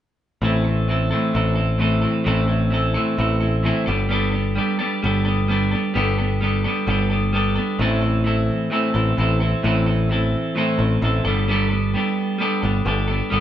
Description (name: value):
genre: rock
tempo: 130 BPM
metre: 4/4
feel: straight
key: A minor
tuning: A4 = 440 Hz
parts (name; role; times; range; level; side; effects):
- clean electric guitar; arpeggios; 0.4-13.4 s; A2 to A4; -20 LUFS; equal; none
- picked electric bass; bass; 0.4-13.4 s; G1 to A1; -21 LUFS; equal; none
room: moderate studio reverb, RT60 0.8 s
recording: band playing live in one room, nothing above 10.8 kHz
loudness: -18 LUFS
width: side -11 dB against mid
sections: 0.4-7.8 A section; 7.8-13.4 B section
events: none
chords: 0.4 Am; 3.9 Gadd9; 7.8 Am; 11.2 Gadd9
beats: | 0.42 0.88 1.34 1.80 | 2.26 2.72 3.19 3.65 | 4.11 4.57 5.03 5.49 | 5.95 6.41 6.87 7.33 | 7.79 8.25 8.71 9.18 | 9.64 10.10 10.56 11.02 | 11.48 11.94 12.40 12.86 | 13.31